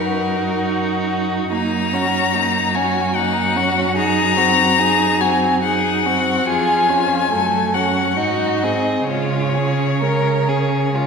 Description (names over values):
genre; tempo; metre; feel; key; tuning
classical, slow romantic movement for string quartet; 64-76 BPM; 3/4; rubato; Db major; A4 = 441 Hz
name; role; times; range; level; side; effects
rich violin; melody; 0.0-11.1 s; A#4 to Bb5; -19 LUFS; left 5 dB; none
rich violin; second line; 0.0-11.1 s; Eb4 to Bb4; -22 LUFS; left 1 dB; none
rich viola; accompaniment; 0.0-11.1 s; Ab3 to F4; -23 LUFS; right 3 dB; none
clear cello; bass; 0.0-11.1 s; F2 to Db3; -22 LUFS; right 3 dB; none
room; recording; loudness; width
wet concert hall reverb, RT60 2.0 s; minimal, uncompressed stereo recording; -15 LUFS; side -5 dB against mid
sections
0.0-11.1 A section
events
none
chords
0.0 D#m/F#; 1.5 Ebm7/Gb; 4.0 Ab7/Gb; 6.5 Db/F; 7.3 Gbm; 8.2 Ab7; 9.1 Db